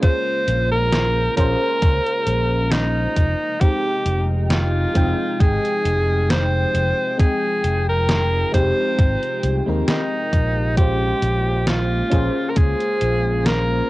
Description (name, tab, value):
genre	vaporwave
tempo	67 BPM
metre	4/4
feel	swing 54% on 16ths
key	F minor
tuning	A4 = 440 Hz
part	bright alto saxophone	melody	0.0-13.9 s	Eb4 to C5	-21 LUFS	equal	tape echo
part	mellow FM electric piano	accompaniment	0.0-13.9 s	Ab3 to G5	-26 LUFS	left 1 dB	lush chorus
part	warbly tape-like pad	sustained chords	0.0-13.9 s	C3 to G5	-30 LUFS	right 1 dB	chorus, built-in reverb
part	detuned 8-bit digital drum machine	drums	0.0-13.7 s	hi-hat, snare drum	-23 LUFS	equal	cassette tape
part	electronic kick drum	drums	0.0-12.8 s	none	-16 LUFS	equal	cassette tape
part	fretless electric bass	bass	0.5-13.8 s	F1 to Eb2	-21 LUFS	equal	none
room	light reverb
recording	home recording on cassette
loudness	-17 LUFS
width	side -18 dB against mid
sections	0.0-13.9 A section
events	none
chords	0.0 Bbm9; 3.2 Fm9; 10.8 Bbm9